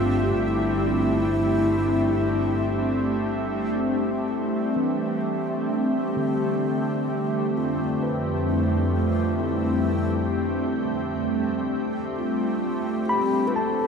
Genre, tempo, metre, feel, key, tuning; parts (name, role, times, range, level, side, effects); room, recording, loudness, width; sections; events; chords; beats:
ambient; 64 BPM; 4/4; straight; A4 = 439 Hz
breathy mellow alto flute; melody; 0.0-13.9 s; D4 to B4; -29 LUFS; left 2 dB; ping-pong delay
airy breathy pad; sustained chords; 0.0-13.9 s; F2 to E5; -24 LUFS; equal; chorus
tine electric piano; arpeggios; 0.0-13.9 s; D3 to B5; -32 LUFS; left 2 dB; ping-pong delay
dark studio double bass section; bass; 0.0-3.8 s; G1; -29 LUFS; equal
organ-like drone; drone; 0.0-13.9 s; G3 to G4; -32 LUFS; equal; ensemble chorus, built-in reverb
wet huge ambient reverb, RT60 7.6 s; dark, warm production; -22 LUFS; side -6 dB against mid
0.0-3.8 A section; 3.8-13.9 B section
fade-in on tine electric piano 3.8-13.9; fade-in on alto flute 3.8-13.9; fade-out on synth drone 3.8-13.9
0.0 Am7/G; 3.8 C; 7.6 Fmaj7; 11.2 Dm7
| 0.04 0.98 1.92 2.87 | 3.83 4.76 5.70 6.63 | 7.56 8.48 9.40 10.32 | 11.25 12.17 13.09